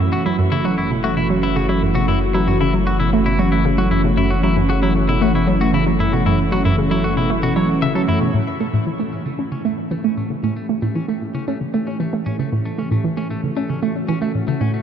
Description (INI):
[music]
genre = ambient, sequencer-driven space music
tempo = 115 BPM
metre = 4/4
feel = straight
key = F# minor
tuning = A4 = 441 Hz
[part]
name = sweeping resonant pad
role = sustained chords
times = 0.0-14.8 s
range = E3 to G4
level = -22 LUFS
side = right 1 dB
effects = chorus
[part]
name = hollow square pluck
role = riff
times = 0.0-14.7 s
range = F#2 to C#4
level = -20 LUFS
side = right 1 dB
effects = chorus, phaser, analog delay
[part]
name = round analog bass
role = bass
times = 0.0-8.3 s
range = F#1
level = -23 LUFS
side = equal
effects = none
[part]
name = clean electric guitar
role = arpeggios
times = 0.1-14.8 s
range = A3 to E5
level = -25 LUFS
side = left 3 dB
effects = auto-pan, analog delay, shimmer reverb
[sound]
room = wet huge ambient reverb, RT60 8.0 s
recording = dark, warm production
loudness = -16 LUFS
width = side -8 dB against mid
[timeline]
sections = 0.0-8.3 A section; 8.3-14.8 B section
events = fade-in on clean electric guitar 8.3-14.8; fade-in on analog synth pad 8.3-14.8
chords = 0.0 F#m7; 8.3 A7